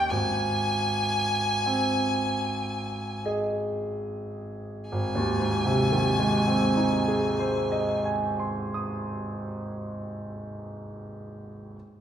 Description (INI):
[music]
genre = classical, romantic duo for violin and grand piano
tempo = 39 BPM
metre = 3/4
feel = rubato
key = Ab major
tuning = A4 = 440 Hz
[part]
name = clear violin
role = melody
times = 0.0-8.0 s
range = G5 to Ab5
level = -28 LUFS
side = equal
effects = none
[part]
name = clear baby grand piano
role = accompaniment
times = 0.0-11.8 s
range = Ab1 to Eb6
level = -27 LUFS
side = right 1 dB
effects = none
[sound]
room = wet recital hall reverb, RT60 1.4 s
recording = heard from further back in the room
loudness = -24 LUFS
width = side -9 dB against mid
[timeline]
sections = 0.0-4.9 A section; 4.9-9.5 B section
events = slowing down 0.0-4.9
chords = 0.1 Ab